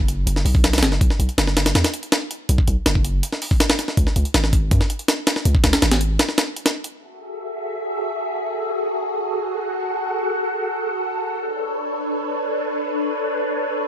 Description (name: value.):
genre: drum and bass, jungle.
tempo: 162 BPM.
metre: 4/4.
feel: straight.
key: F# minor.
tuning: A4 = 443 Hz.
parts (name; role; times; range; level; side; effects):
long sustained 808-style bass; bass; 0.0-6.2 s; F#1 to F#2; -20 LUFS; equal; none.
jungle sampler-style drum kit; drums; 0.1-6.9 s; hi-hat, kick drum, snare drum; -18 LUFS; equal; none.
soft string machine; sustained chords; 7.3-13.9 s; D4 to F#5; -22 LUFS; equal; phaser, ensemble chorus.
room: light reverb.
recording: none.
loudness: -18 LUFS.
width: side -9 dB against mid.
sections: 0.0-6.9 A section; 6.9-13.9 B section.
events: none.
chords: 0.0 B5; 3.2 C#5; 6.9 F#m9; 11.4 Bm9.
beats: 0.27 0.64 | 1.01 1.38 1.75 2.12 | 2.49 2.86 3.23 3.60 | 3.97 4.34 4.71 5.08 | 5.46 5.83 6.20 6.57 | 6.94 7.31 7.68 8.05 | 8.42 8.79 9.16 9.53 | 9.90 10.27 10.64 11.01 | 11.38 11.75 12.12 12.49 | 12.86 13.23 13.60.